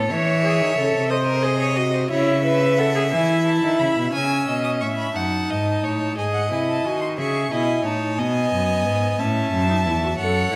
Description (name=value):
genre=classical, baroque-style fugue for string quartet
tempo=60 BPM (dotted quarters)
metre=6/8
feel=straight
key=unclear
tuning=A4 = 440 Hz
part: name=rich violin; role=melody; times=0.0-10.6 s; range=C#5 to E6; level=-29 LUFS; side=equal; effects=none
part: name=bright violin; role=second line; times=0.0-10.6 s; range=A4 to G#5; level=-28 LUFS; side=equal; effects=none
part: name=clear cello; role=bass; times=0.0-10.6 s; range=E2 to E3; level=-26 LUFS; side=equal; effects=none
part: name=rich viola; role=accompaniment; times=0.1-10.6 s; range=B3 to C#5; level=-26 LUFS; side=equal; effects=none
room=wet recital hall reverb, RT60 1.7 s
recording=none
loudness=-21 LUFS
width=mono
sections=0.0-4.1 A section; 4.1-10.6 B section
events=none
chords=0.1 C#m/E; 1.1 Cdim; 2.1 C#m; 3.1 C#m/E (rootless); 4.1 Amaj7; 5.2 D#dim/F#; 6.2 G#; 7.2 C#m; 8.2 B6; 9.2 A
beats=| 0.11 1.10 | 2.11 3.12 | 4.14 5.16 | 6.17 7.18 | 8.19 9.20 | 10.19